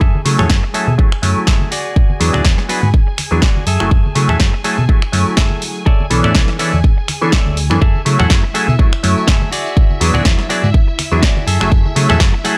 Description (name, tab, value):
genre	filtered disco house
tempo	123 BPM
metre	4/4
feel	swing 56% on 16ths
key	F# minor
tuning	A4 = 439 Hz
part	string machine, full ensemble	sustained chords	0.0-12.6 s	E5 to G#5	-31 LUFS	equal	ensemble chorus, sidechain pumping, low-pass filter
part	semi-hollow electric guitar	riff	0.0-12.6 s	F#4 to F#5	-24 LUFS	equal	sidechain pumping, low-pass filter
part	hollow-body short-scale fingered electric bass	bass	0.0-12.3 s	F#1 to C#3	-18 LUFS	equal	sidechain pumping, low-pass filter
part	electronic kick drum	drums	0.0-12.3 s	none	-15 LUFS	equal	none
part	tambourine and congas	percussion	0.0-12.4 s	none	-27 LUFS	equal	sidechain pumping on perc, low-pass filter on perc
part	mellow clav	accompaniment	0.3-12.6 s	E3 to G#5	-21 LUFS	equal	phaser, sidechain pumping, low-pass filter
part	house drum kit	drums	0.3-12.6 s	finger snaps, hi-hat, snare drum	-22 LUFS	equal	sidechain pumping on cymbals, sidechain pumping on hats
room	little or no reverb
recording	none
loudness	-14 LUFS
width	mono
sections	0.0-12.6 A section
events	filter sweep 0.0-12.6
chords	0.0 F#m9; 1.7 E9; 3.7 F#m9; 5.9 Bm11; 7.8 F#m9; 9.5 E9; 11.5 F#m9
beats	| 0.01 0.50 0.99 1.47 | 1.96 2.45 2.94 3.42 | 3.91 4.40 4.89 5.38 | 5.86 6.35 6.84 7.33 | 7.82 8.30 8.79 9.28 | 9.77 10.25 10.74 11.23 | 11.72 12.21